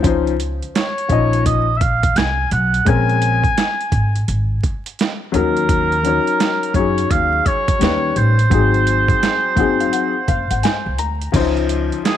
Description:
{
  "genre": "hip hop, jazz-hop",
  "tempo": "85 BPM",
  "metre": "4/4",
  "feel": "swing 65% on 16ths",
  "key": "Db major",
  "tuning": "A4 = 439 Hz",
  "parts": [
    { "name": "warm upright piano", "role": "accompaniment", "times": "0.0-12.2 s", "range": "F3 to Bb5", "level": "-20 LUFS", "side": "left 8 dB", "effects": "none" },
    { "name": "upright bass", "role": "bass", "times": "0.0-11.9 s", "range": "Gb1 to Gb2", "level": "-19 LUFS", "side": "equal", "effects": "none" },
    { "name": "dusty soul sampler-style drum kit", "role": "drums", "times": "0.0-12.2 s", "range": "crash cymbal, hi-hat, kick drum, snare drum", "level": "-20 LUFS", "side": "right 2 dB", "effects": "overdrive" },
    { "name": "warm oboe", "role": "melody", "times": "0.8-12.2 s", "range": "Ab4 to Ab5", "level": "-19 LUFS", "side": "right 2 dB", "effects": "none" }
  ],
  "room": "light reverb, small room ambience",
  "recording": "1960s-style stereo, vinyl crackle",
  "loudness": "-14 LUFS",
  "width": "side -10 dB against mid",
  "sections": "0.0-11.3 A section",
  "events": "upright piano fill 9.2-11.3",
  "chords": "0.0 Dbmaj9; 2.9 Bbm9; 5.3 Ebm7; 7.8 Ebaug7; 8.5 Ab7; 11.3 Dbmaj9",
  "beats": "| 0.04 0.75 1.46 2.16 | 2.87 3.57 4.28 4.99 | 5.69 6.40 7.10 7.81 | 8.51 9.22 9.93 10.63 | 11.34 12.04"
}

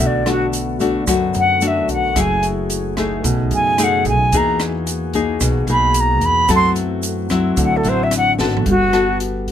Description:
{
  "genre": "bossa nova",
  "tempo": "111 BPM",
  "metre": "4/4",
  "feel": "straight",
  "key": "unclear",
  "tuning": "A4 = 441 Hz",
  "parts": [
    { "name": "silver concert flute", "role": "melody", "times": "0.0-9.2 s", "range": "F#4 to C6", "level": "-16 LUFS", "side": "equal", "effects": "none" },
    { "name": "nylon-string guitar", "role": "accompaniment", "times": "0.0-9.5 s", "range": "F#2 to A4", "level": "-19 LUFS", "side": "left 4 dB", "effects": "none" },
    { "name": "pipe organ, flutes", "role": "sustained chords", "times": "0.0-8.6 s", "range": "C#3 to G#4", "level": "-27 LUFS", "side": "left 1 dB", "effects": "none" },
    { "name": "upright bass", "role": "bass", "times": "0.0-9.5 s", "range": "F#1 to F#2", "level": "-22 LUFS", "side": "right 1 dB", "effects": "none" },
    { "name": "egg shaker", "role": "percussion", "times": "0.0-8.7 s", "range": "none", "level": "-28 LUFS", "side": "right 8 dB", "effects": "none" },
    { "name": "open jazz drum kit", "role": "drums", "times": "0.3-9.5 s", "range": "hi-hat, kick drum, rim click, snare drum, toms", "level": "-25 LUFS", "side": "right 1 dB", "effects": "none" }
  ],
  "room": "light reverb",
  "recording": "none",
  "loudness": "-14 LUFS",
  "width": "side -9 dB against mid",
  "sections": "0.0-8.7 A section",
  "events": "flute solo 0.0-8.7; drum fill 8.4",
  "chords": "0.0 Bm7; 2.2 F#m9; 3.2 B13; 4.3 Emaj9#11; 6.5 F#m7b5; 7.6 D9; 8.7 Gmaj9",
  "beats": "0.53 1.07 1.62 | 2.16 2.70 3.24 3.78 | 4.32 4.87 5.41 5.95 | 6.49 7.03 7.57 8.12 | 8.66 9.20"
}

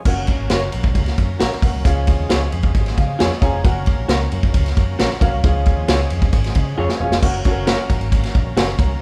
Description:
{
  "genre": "uptempo 1960s-style soul",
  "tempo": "134 BPM",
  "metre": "4/4",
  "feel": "straight",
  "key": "F# major",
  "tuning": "A4 = 440 Hz",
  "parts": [
    { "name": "overdriven tonewheel organ", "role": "sustained chords", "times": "0.0-9.0 s", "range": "E#3 to A#4", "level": "-33 LUFS", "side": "equal", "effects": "chorus vibrato" },
    { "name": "warm concert grand piano", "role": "accompaniment", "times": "0.1-9.0 s", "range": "C#3 to A#5", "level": "-28 LUFS", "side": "equal", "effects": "none" },
    { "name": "vintage muted fingered electric bass", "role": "bass", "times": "0.1-8.9 s", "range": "E1 to C#3", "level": "-24 LUFS", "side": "equal", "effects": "none" },
    { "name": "vintage drum kit", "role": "drums", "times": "0.1-8.9 s", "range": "crash cymbal, hi-hat, kick drum, ride cymbal, snare drum", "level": "-20 LUFS", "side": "equal", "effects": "none" },
    { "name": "electric guitar through a small old amp", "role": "stabs", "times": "0.5-8.7 s", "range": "E#4 to C#5", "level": "-28 LUFS", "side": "equal", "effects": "none" }
  ],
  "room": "light reverb",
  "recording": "band playing live in one room",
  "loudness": "-18 LUFS",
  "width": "mono",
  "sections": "0.1-7.2 A section; 7.2-9.0 B section",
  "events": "grand piano fill 2.7-3.6; drum fill 6.8-7.2",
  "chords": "0.1 F#; 1.9 C#; 3.6 F#; 5.4 C#; 7.2 F#",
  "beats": "| 0.06 0.51 0.95 1.40 | 1.85 2.30 2.75 3.20 | 3.65 4.09 4.54 4.99 | 5.44 5.88 6.33 6.78 | 7.23 7.67 8.12 8.57"
}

